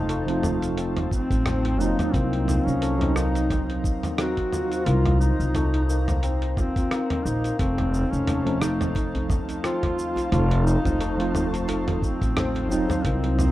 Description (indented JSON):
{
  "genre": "organic downtempo",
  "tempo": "88 BPM",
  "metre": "4/4",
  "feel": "swing 56% on 16ths",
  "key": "unclear",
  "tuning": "A4 = 441 Hz",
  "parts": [
    { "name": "mellow duduk", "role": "melody", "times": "0.0-13.5 s", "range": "C4 to Gb4", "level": "-28 LUFS", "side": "left 1 dB", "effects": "tape echo" },
    { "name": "tine electric piano", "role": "accompaniment", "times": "0.0-13.5 s", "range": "F3 to F4", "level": "-29 LUFS", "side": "right 2 dB", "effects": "medium stereo tremolo, sidechain pumping, tape echo" },
    { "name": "airy breathy pad", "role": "sustained chords", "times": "0.0-13.5 s", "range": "Eb4 to Bb5", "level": "-33 LUFS", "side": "right 1 dB", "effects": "chorus, sidechain pumping" },
    { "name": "santur", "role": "arpeggios", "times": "0.0-13.5 s", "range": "A3 to F4", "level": "-32 LUFS", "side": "left 3 dB", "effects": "tape echo" },
    { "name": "upright bass", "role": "bass", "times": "0.0-13.5 s", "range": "F1 to Eb2", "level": "-25 LUFS", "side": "equal", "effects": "sidechain pumping" },
    { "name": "dusty soul sampler-style drum kit", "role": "drums", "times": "0.1-13.5 s", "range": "hi-hat, rim click, shaker, toms", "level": "-30 LUFS", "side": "equal", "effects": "none" },
    { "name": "electronic kick drum", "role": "drums", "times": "1.1-13.2 s", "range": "none", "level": "-26 LUFS", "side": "equal", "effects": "none" },
    { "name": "djembe", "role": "percussion", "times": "7.8-13.4 s", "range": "none", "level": "-33 LUFS", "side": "right 1 dB", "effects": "none" }
  ],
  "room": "little or no reverb",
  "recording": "rough home demo mix",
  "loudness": "-21 LUFS",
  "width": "side -15 dB against mid",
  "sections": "0.0-13.5 A section",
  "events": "none",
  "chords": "0.0 F7; 2.1 Cm7b5; 7.6 F7",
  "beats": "0.09 0.78 1.46 | 2.14 2.82 3.50 4.18 | 4.87 5.55 6.23 6.91 | 7.59 8.28 8.96 9.64 | 10.32 11.00 11.68 12.37 | 13.05"
}